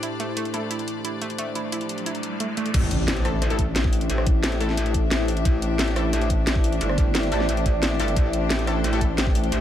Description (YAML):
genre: dark technical drum and bass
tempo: 177 BPM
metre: 4/4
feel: straight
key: A minor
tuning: A4 = 440 Hz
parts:
  - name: deep dark ambient pad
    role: sustained chords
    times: 0.0-9.6 s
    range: A3 to D5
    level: -28 LUFS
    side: left 1 dB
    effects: chorus, built-in reverb, sidechain pumping
  - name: analog pluck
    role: arpeggios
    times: 0.0-2.7 s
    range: A3 to E4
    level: -32 LUFS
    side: right 3 dB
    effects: chorus, sidechain pumping, ping-pong delay
  - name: drum and bass drum kit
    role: drums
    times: 0.0-9.6 s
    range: crash cymbal, hi-hat, rim click, snare drum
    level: -27 LUFS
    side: equal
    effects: none
  - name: riser and impact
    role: sound effects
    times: 1.7-4.1 s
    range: none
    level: -32 LUFS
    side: equal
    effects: none
  - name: clear studio string section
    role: texture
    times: 0.0-9.6 s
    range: A3 to G5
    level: -31 LUFS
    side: left 2 dB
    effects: sidechain pumping
  - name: orchestra-hit-like synth stab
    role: stabs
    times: 0.5-0.8, 3.2-9.1 s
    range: A3 to A4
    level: -32 LUFS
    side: left 1 dB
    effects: built-in reverb, ping-pong delay
  - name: metallic wobble bass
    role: bass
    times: 2.7-9.6 s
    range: G1 to A1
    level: -25 LUFS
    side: equal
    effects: distortion, chorus, overdrive, sidechain pumping
  - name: electronic kick drum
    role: drums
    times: 2.7-9.3 s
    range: none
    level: -21 LUFS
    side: equal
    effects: none
room: light reverb, digital ambience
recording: none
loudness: -21 LUFS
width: side -11 dB against mid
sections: 0.0-2.7 A section; 2.7-9.6 B section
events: filter sweep on synth arpeggio sound 0.0-2.7; riser 1.7-2.7; drop 2.7-9.6; impact 2.7-4.1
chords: 0.0 Am